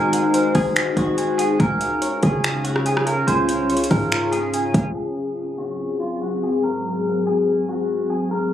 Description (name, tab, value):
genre	hip hop, atmospheric cloud-rap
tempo	143 BPM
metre	4/4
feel	half-time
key	unclear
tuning	A4 = 435 Hz
part	clean electric guitar	melody	0.0-8.5 s	F4 to C5	-25 LUFS	equal	lush chorus, low-pass filter, tape echo
part	glassy FM pad	sustained chords	0.0-8.5 s	Db2 to C5	-22 LUFS	left 2 dB	ensemble chorus, built-in reverb, sidechain pumping
part	Celtic harp	arpeggios	0.0-7.2 s	C4 to Ab5	-26 LUFS	left 1 dB	low-pass filter, tape echo
part	warm 808-style bass	bass	0.0-4.9 s	Ab1 to Db3	-26 LUFS	equal	none
part	smooth R&B drum kit	drums	0.1-4.8 s	finger snaps, hi-hat, kick drum, rim click	-23 LUFS	equal	overdrive
room	light reverb, digital ambience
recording	recorded on a phone in the room, club reverb, compression, low-pass filter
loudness	-18 LUFS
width	side -10 dB against mid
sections	0.0-5.0 A section; 5.0-8.5 B section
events	none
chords	0.0 Ab7; 1.6 Db; 5.0 Ab7